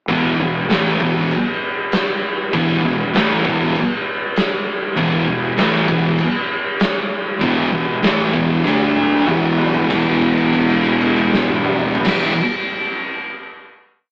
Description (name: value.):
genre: stoner and doom metal.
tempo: 98 BPM.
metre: 4/4.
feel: straight.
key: unclear.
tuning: A4 = 439 Hz.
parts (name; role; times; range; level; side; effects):
thick fuzz guitar; riff; 0.1-12.3 s; E2 to D4; -19 LUFS; equal; distortion.
thick fuzz guitar; riff; 0.1-12.3 s; E2 to D4; -19 LUFS; equal; distortion.
fuzz fingered electric bass; bass; 0.1-12.3 s; E1 to D2; -24 LUFS; equal; none.
oversized low-tuned drum kit; drums; 0.1-12.2 s; crash cymbal, kick drum, snare drum, toms; -18 LUFS; equal; none.
room: light reverb.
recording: rough rehearsal-room recording, tube saturation, AM radio sound.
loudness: -14 LUFS.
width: side -36 dB against mid.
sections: 0.1-9.9 riff; 9.9-12.4 final chord.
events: slowing down 5.0-9.9; drum fill 8.7-9.9; held note 9.9-12.0.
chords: 0.1 E5; 8.7 D5; 9.3 E5.